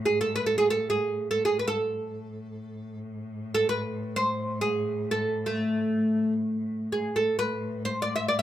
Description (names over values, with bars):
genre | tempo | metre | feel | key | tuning
Arabic maqam ensemble | free time | none | none | A maqam nahawand | A4 = 439 Hz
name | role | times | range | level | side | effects
warm cello | drone | 0.0-8.4 s | A2 | -35 LUFS | left 1 dB | none
oud | melody | 0.1-8.4 s | A3 to E5 | -25 LUFS | right 1 dB | none
room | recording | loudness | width
moderate small room reverb, RT60 0.5 s | minimal, uncompressed stereo recording | -25 LUFS | side -12 dB against mid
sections
0.0-6.6 A section; 6.6-8.4 A section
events
none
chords
none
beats
free time